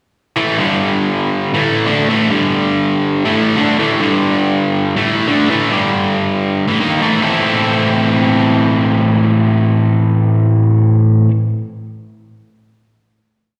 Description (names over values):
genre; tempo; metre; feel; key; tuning
rock; 140 BPM; 4/4; straight; A minor; A4 = 438 Hz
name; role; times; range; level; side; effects
cranked stack guitar; solo; 0.4-11.3 s; G2 to A4; -14 LUFS; equal; overdrive, slapback echo
room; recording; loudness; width
moderate lush hall reverb, RT60 2.2 s; live gig heard through the venue's PA, recital hall reverb; -14 LUFS; mono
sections
0.4-7.2 riff; 7.2-10.7 final chord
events
none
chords
0.4 A5; 0.6 G5; 1.5 A5; 2.3 G5; 3.2 A5; 4.0 G5; 5.0 A5; 5.7 G5; 6.7 A5; 7.2 Am